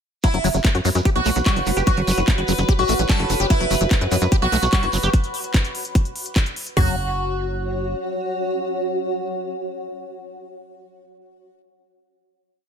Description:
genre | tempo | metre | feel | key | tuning
psychedelic trance | 147 BPM | 4/4 | straight | unclear | A4 = 440 Hz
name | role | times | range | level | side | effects
sitar | melody | 0.2-10.1 s | E4 to A4 | -26 LUFS | right 1 dB | phaser, sidechain pumping, ping-pong delay
overtone-sweeping drone | sustained chords | 0.9-5.1 s | B4 | -30 LUFS | right 2 dB | chorus, built-in reverb, phaser, sidechain pumping
liquid acid bass | riff | 0.2-7.0 s | F#3 to G4 | -25 LUFS | moving between left 7 dB and right 4 dB | phaser, auto-pan, sidechain pumping, ping-pong delay
drum and bass drum kit | drums | 0.2-6.9 s | hi-hat, kick drum, toms | -18 LUFS | equal | studio reverb
drum and bass drum kit | drums | 0.2-6.7 s | handclaps, hi-hat | -28 LUFS | left 1 dB | studio reverb
shekere | percussion | 0.2-5.1 s | none | -32 LUFS | right 6 dB | none
granular cloud pad | texture | 0.9-10.2 s | F#4 to F#5 | -28 LUFS | equal | built-in reverb, sidechain pumping
tight sequencer bass | bass | 0.3-8.0 s | F#1 to F#2 | -23 LUFS | equal | none
room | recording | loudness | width
light reverb | none | -18 LUFS | side -8 dB against mid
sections
0.2-6.8 groove; 6.8-10.0 final chord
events
none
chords
0.2 F#5

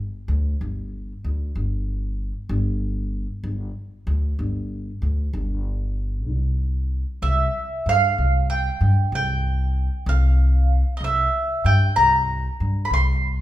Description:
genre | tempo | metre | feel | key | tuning
acoustic country blues, solo or duo | 63 BPM (dotted quarters) | 12/8 | straight | unclear | A4 = 439 Hz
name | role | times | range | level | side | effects
upright bass | bass | 0.3-13.4 s | G1 to G2 | -21 LUFS | equal | none
mandolin | melody | 7.2-13.4 s | Eb5 to C6 | -22 LUFS | right 1 dB | none
room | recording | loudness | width
moderate recital hall reverb, RT60 1.6 s | minimal, uncompressed stereo recording | -20 LUFS | side -14 dB against mid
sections
0.0-13.4 A section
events
none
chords
0.0 G5; 6.3 C5

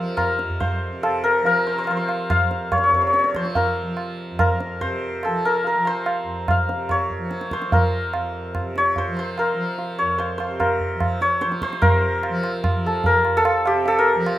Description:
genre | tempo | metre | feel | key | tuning
indian classical, Hindustani | 145 BPM | 5/4 | straight | unclear | A4 = 440 Hz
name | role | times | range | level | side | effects
santur | melody | 0.0-14.4 s | G4 to F5 | -20 LUFS | left 1 dB | none
tanpura | drone | 0.0-14.4 s | F2 to F3 | -29 LUFS | equal | none
tabla | percussion | 0.2-14.4 s | none | -24 LUFS | right 1 dB | none
room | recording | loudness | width
wet studio ambience, RT60 0.5 s | rough home demo mix | -19 LUFS | side -14 dB against mid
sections
0.0-11.8 A section; 11.8-14.4 B section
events
speeding up 0.0-14.4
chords
none

